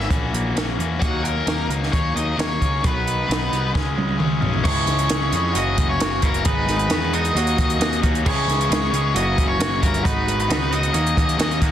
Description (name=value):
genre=indie rock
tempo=133 BPM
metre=4/4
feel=straight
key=unclear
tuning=A4 = 440 Hz
part: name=octave-fuzz lead guitar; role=melody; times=0.0-11.6 s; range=F#4 to D#5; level=-25 LUFS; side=left 2 dB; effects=distortion, analog delay
part: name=overdriven electric guitar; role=riff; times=0.0-11.7 s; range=F#2 to F#4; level=-27 LUFS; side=left 8 dB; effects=none
part: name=twangy electric guitar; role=riff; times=0.0-11.7 s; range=D#3 to G#4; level=-29 LUFS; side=right 6 dB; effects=wide subtle chorus, analog delay
part: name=fuzz picked electric bass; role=bass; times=0.0-11.7 s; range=F#1 to E#2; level=-24 LUFS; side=equal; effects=overdrive
part: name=compact cocktail drum kit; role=drums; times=0.0-11.7 s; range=crash cymbal, hi-hat, kick drum, snare drum, toms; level=-22 LUFS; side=equal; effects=none
part: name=barky tine electric piano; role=second line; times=4.7-11.6 s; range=D#4 to G#4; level=-31 LUFS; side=right 7 dB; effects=medium stereo tremolo
room=light reverb, studio reverb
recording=dense, heavily limited modern master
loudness=-18 LUFS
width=side -10 dB against mid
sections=0.0-4.6 A section; 4.6-11.7 B section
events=drum fill 3.7-4.6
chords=0.0 F#7; 1.0 D#m7; 2.8 B; 3.7 C#sus4; 4.6 C#m7; 5.5 F#7; 6.4 G#m7; 7.3 D#m7; 8.2 C#m7; 9.1 F#7; 10.0 G#m7; 10.9 D#m7